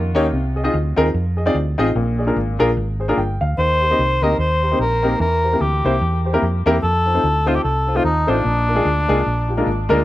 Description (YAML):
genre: uptempo gospel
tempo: 148 BPM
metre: 4/4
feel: swing 59% on 8ths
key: unclear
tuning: A4 = 440 Hz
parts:
  - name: warm baby grand piano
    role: accompaniment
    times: 0.0-10.0 s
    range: Bb2 to G5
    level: -20 LUFS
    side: left 1 dB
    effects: none
  - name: hollow-body short-scale fingered electric bass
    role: bass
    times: 0.0-10.0 s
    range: G1 to F2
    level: -20 LUFS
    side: right 1 dB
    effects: none
  - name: mellow cor anglais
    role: melody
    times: 3.6-9.7 s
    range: D4 to C5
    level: -20 LUFS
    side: left 1 dB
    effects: tape echo
room: light reverb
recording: echo-heavy mix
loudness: -16 LUFS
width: side -15 dB against mid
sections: 0.0-10.0 A section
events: none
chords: 0.3 Ab6/C; 2.0 Bb7; 3.6 Eb6; 5.2 C7; 6.8 F7; 8.5 Bb7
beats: | 0.33 0.74 1.14 1.55 | 1.96 2.36 2.77 3.17 | 3.58 3.98 4.39 4.80 | 5.20 5.61 6.01 6.42 | 6.83 7.23 7.64 8.04 | 8.45 8.86 9.26 9.67